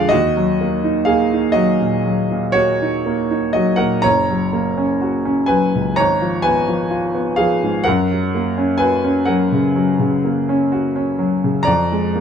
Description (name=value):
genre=classical, romantic nocturne for solo piano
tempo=62 BPM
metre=4/4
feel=rubato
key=unclear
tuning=A4 = 440 Hz
part: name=warm grand piano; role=solo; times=0.0-12.2 s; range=Gb1 to Bb5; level=-15 LUFS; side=equal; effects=none
room=light reverb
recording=minimal, uncompressed stereo recording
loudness=-15 LUFS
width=side -7 dB against mid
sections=0.0-12.2 A section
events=none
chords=0.1 Ebm; 4.0 Gb; 6.0 Fdim/Ab; 7.9 Gb; 11.7 Bb7/F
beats=| 0.12 1.08 2.05 3.06 | 4.04 5.01 5.98 6.92 | 7.86 8.80 9.75 10.71 | 11.66